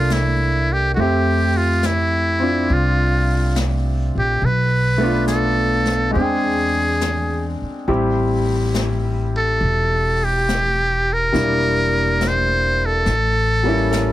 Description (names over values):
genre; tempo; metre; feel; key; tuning
jazz ballad; 70 BPM; 4/4; swing 68% on 8ths; unclear; A4 = 440 Hz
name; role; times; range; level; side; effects
trumpet with metal mute; melody; 0.0-14.1 s; E4 to C5; -20 LUFS; equal; none
bright upright piano; accompaniment; 0.0-14.1 s; G3 to G5; -22 LUFS; left 1 dB; none
upright bass; bass; 0.0-14.1 s; E1 to F2; -20 LUFS; equal; none
jazz brush drum kit; drums; 0.1-14.1 s; brushed snare drum, hi-hat, snare drum; -29 LUFS; left 2 dB; none
room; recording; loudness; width
little or no reverb; heavily compressed radio sound, multiband compression; -16 LUFS; side -14 dB against mid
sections
0.0-14.1 A section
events
none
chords
0.0 C13; 1.0 Fmaj9; 4.4 Bm7b5; 6.1 E7alt; 7.9 Am7; 11.3 Em7b5; 13.1 A7b9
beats
0.10 | 0.97 1.83 2.69 3.56 | 4.42 5.28 6.15 7.02 | 7.89 8.75 9.62 10.48 | 11.35 12.21 13.07 13.94